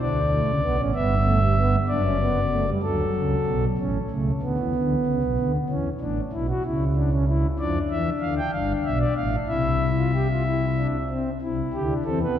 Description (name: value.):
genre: classical, baroque-style 3-part fugue for pipe organ.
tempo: 63 BPM (dotted quarters).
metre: 6/8.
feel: straight.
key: C major from 7.6 s.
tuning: A4 = 442 Hz.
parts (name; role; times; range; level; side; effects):
pipe organ, principal; solo; 0.0-12.4 s; F#1 to G5; -21 LUFS; equal; none.
room: wet church reverb, RT60 3.0 s.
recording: none.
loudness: -21 LUFS.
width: side -10 dB against mid.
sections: 0.0-3.8 A section; 3.8-11.4 B section.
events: none.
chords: 0.0 D5; 0.9 G; 1.9 D/F#; 2.8 D; 3.8 Aadd9; 4.7 Bm; 5.7 E5; 6.6 C#m; 7.6 Dm; 8.5 G7; 9.5 C.